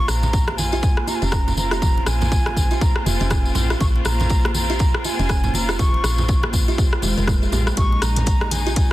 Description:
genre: afro house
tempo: 121 BPM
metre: 4/4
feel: swing 59% on 16ths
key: Bb minor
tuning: A4 = 437 Hz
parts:
  - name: mellow hollow silver concert flute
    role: melody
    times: 0.0-8.9 s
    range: Ab5 to Db6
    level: -27 LUFS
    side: right 2 dB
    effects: digital delay
  - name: rich studio string section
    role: sustained chords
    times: 0.0-8.9 s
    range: Db3 to F4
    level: -30 LUFS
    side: left 2 dB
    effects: sidechain pumping
  - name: woody FM bass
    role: bass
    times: 0.0-8.9 s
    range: F1 to Bb1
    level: -23 LUFS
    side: equal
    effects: sidechain pumping
  - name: afro-pop drum kit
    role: drums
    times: 0.1-8.9 s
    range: hi-hat, rim click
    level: -28 LUFS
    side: equal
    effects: soft clipping on snare
  - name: tambourine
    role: percussion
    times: 0.1-8.9 s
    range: none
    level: -29 LUFS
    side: left 3 dB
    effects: none
  - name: congas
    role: percussion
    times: 0.2-8.7 s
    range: none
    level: -28 LUFS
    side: right 2 dB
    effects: none
  - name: electronic kick drum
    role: drums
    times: 0.3-8.9 s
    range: none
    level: -19 LUFS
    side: equal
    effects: none
  - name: kalimba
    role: arpeggios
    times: 0.5-8.9 s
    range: F3 to Bb4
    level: -28 LUFS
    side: right 2 dB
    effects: sidechain pumping, digital delay
room: small room reverb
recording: dense, heavily limited modern master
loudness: -17 LUFS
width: side -16 dB against mid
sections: 0.0-8.9 A section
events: none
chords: 0.0 Bb7(no3); 7.8 Dbsus2

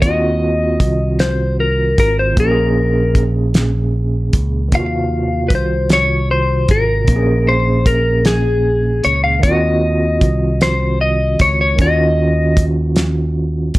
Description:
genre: slow six-eight R&B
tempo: 51 BPM (dotted quarters)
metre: 6/8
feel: straight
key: Eb dorian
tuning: A4 = 440 Hz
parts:
  - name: clean electric guitar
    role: melody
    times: 0.0-12.6 s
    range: Ab4 to F5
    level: -17 LUFS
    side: left 2 dB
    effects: slapback echo
  - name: overdriven tine electric piano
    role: accompaniment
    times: 0.0-13.8 s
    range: Bb2 to Ab4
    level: -19 LUFS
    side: right 2 dB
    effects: medium tremolo
  - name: fingered electric bass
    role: bass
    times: 0.0-13.8 s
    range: Ab1 to Eb2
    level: -18 LUFS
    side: equal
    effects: none
  - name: cloth-damped thuddy drum kit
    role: drums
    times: 0.0-13.8 s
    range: hi-hat, kick drum, snare drum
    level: -15 LUFS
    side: equal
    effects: none
room: light reverb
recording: none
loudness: -13 LUFS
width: side -18 dB against mid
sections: 0.0-13.8 A section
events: none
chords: 0.0 Ebm69; 2.4 Bbm7; 4.7 Ebm69; 7.1 Bbm7; 9.4 Ebm69; 11.8 Ebm9

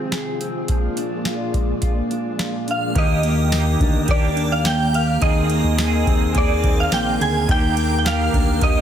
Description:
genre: dream pop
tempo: 106 BPM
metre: 4/4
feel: straight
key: Eb major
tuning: A4 = 440 Hz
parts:
  - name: string machine, cellos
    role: sustained chords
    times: 0.0-8.8 s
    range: Bb3 to D6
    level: -28 LUFS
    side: equal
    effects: ensemble chorus, low-pass filter
  - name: mellow electric guitar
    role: arpeggios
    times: 0.0-8.8 s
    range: Eb3 to Ab4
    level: -23 LUFS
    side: left 2 dB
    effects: lush chorus, low-pass filter, ping-pong delay
  - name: booming analog drum machine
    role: drums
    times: 0.1-8.8 s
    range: hi-hat, kick drum, ride cymbal, snare drum, tambourine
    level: -22 LUFS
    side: equal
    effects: none
  - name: shimmering bell with halo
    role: melody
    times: 2.7-8.8 s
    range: D5 to Ab5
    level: -22 LUFS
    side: right 2 dB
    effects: ensemble chorus, tremolo, ping-pong delay
  - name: clean electric guitar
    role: accompaniment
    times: 2.9-8.8 s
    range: Eb3 to Ab4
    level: -28 LUFS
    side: right 5 dB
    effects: tremolo, analog chorus
  - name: chorused synth bass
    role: bass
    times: 3.0-8.8 s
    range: Bb1 to Eb2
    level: -23 LUFS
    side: equal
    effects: none
room: moderate plate reverb, RT60 1.6 s, digital ambience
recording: dense, heavily limited modern master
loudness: -17 LUFS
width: side -9 dB against mid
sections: 0.0-3.0 A section; 3.0-8.8 B section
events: filter sweep 0.0-3.0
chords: 0.0 Fm7; 0.7 Bb7; 3.0 Ebmaj7; 5.2 Abadd9/Eb; 7.5 Ebmaj7

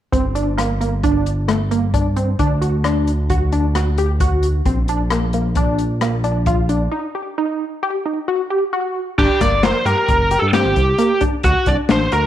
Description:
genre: progressive instrumental, band music in an uneven meter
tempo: 132 BPM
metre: 5/4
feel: straight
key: G harmonic minor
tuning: A4 = 439 Hz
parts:
  - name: tight sequenced synth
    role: arpeggios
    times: 0.1-12.3 s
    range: A3 to Bb4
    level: -20 LUFS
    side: equal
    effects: chorus, slapback echo
  - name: smooth synth bass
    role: bass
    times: 0.1-12.3 s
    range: F#1 to G2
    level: -19 LUFS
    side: equal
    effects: none
  - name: open jazz drum kit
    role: drums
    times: 0.1-12.2 s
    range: crash cymbal, hi-hat, kick drum, rim click, snare drum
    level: -21 LUFS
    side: left 1 dB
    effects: none
  - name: biting lead guitar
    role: melody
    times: 9.2-12.3 s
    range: F#4 to D5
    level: -16 LUFS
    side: right 1 dB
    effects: overdrive
room: light reverb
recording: 1960s-style stereo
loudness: -15 LUFS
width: side -11 dB against mid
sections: 0.1-9.2 A section; 9.2-12.3 B section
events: break 6.9-9.2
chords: 0.1 Gm; 2.4 D; 4.7 Bb; 6.9 Eb; 9.2 Gm; 11.4 D

